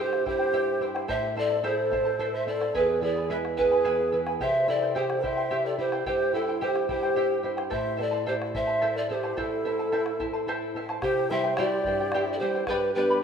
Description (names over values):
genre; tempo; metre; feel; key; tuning
andean folk, Andean ensemble; 72 BPM (dotted quarters); 6/8; straight; A minor; A4 = 440 Hz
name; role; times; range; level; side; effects
mellow polished pan flute; melody; 0.0-13.2 s; A4 to E5; -27 LUFS; right 2 dB; none
breathy large quena; second line; 0.0-13.2 s; E4 to D5; -31 LUFS; left 3 dB; none
charango; accompaniment; 0.0-13.2 s; E4 to B5; -32 LUFS; right 1 dB; none
flamenco guitar; accompaniment; 0.0-13.2 s; E2 to A4; -35 LUFS; right 2 dB; none
bombo; percussion; 0.0-12.9 s; none; -40 LUFS; equal; none
room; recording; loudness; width
wet lush hall reverb, RT60 2.5 s; rough home demo mix; -24 LUFS; side -7 dB against mid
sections
0.0-11.0 A section; 11.0-13.2 B section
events
none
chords
0.0 C; 1.1 Am; 2.7 E; 4.4 C; 7.7 Am; 11.0 C; 12.7 G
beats
0.26 | 1.09 1.92 | 2.75 3.57 | 4.40 5.23 | 6.06 6.89 | 7.72 8.54 | 9.37 10.20 | 11.03 11.86 | 12.68